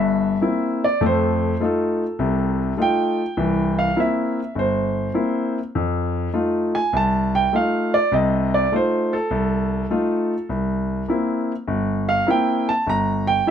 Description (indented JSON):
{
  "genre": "solo jazz",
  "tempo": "101 BPM",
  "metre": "4/4",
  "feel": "swing 68% on 8ths",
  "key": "C mixolydian",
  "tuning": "A4 = 440 Hz",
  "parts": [
    { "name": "clear concert grand piano", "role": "solo", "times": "0.0-13.5 s", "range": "G1 to Bb5", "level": "-18 LUFS", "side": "equal", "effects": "none" }
  ],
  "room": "light reverb",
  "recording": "close, detailed microphones",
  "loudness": "-18 LUFS",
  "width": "side -8 dB against mid",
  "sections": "0.0-13.5 A section",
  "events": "grand piano solo 0.0-13.5",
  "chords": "0.0 C7; 1.0 F7; 3.4 C7; 5.8 F7; 10.5 C7"
}